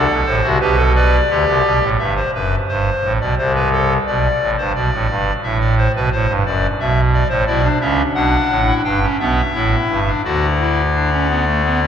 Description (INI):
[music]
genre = classical, baroque-style 3-part fugue for pipe organ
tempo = 87 BPM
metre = 4/4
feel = straight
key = D major from 7.5 s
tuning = A4 = 445 Hz
[part]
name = pipe organ, clarinet reed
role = solo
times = 0.0-11.9 s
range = F#1 to G5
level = -14 LUFS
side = equal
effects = none
[sound]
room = wet church reverb, RT60 3.7 s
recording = dark, warm production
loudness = -14 LUFS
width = side -8 dB against mid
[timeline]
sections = 0.0-2.0 A section; 2.0-11.9 B section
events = none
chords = 0.0 D7; 0.6 G/B; 2.0 Am7; 3.4 D5/C; 4.7 G; 6.1 D7; 7.5 Bm; 8.8 Em/G; 9.5 A5; 10.2 D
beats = 0.60 1.29 | 1.99 2.68 3.37 4.06 | 4.75 5.43 6.11 6.79 | 7.47 8.15 8.84 9.54 | 10.24 10.95 11.65